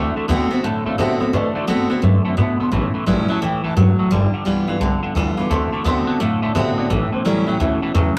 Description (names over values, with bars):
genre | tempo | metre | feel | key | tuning
rockabilly | 172 BPM | 4/4 | swing 64% on 8ths | D mixolydian | A4 = 440 Hz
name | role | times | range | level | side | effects
dark upright piano | accompaniment | 0.0-8.2 s | C#3 to D6 | -30 LUFS | equal | none
picked steel-string acoustic guitar | accompaniment | 0.0-8.2 s | F#2 to F#4 | -24 LUFS | equal | none
electric guitar at the edge of break-up | riff | 0.0-8.1 s | G2 to B3 | -24 LUFS | equal | phaser
upright bass | bass | 0.0-8.1 s | G1 to C3 | -23 LUFS | equal | none
room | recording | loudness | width
light reverb | rough rehearsal-room recording, tube saturation | -19 LUFS | mono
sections
0.0-8.2 A section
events
none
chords
0.0 D7; 2.7 A7; 4.1 G7; 5.5 D7; 6.9 A7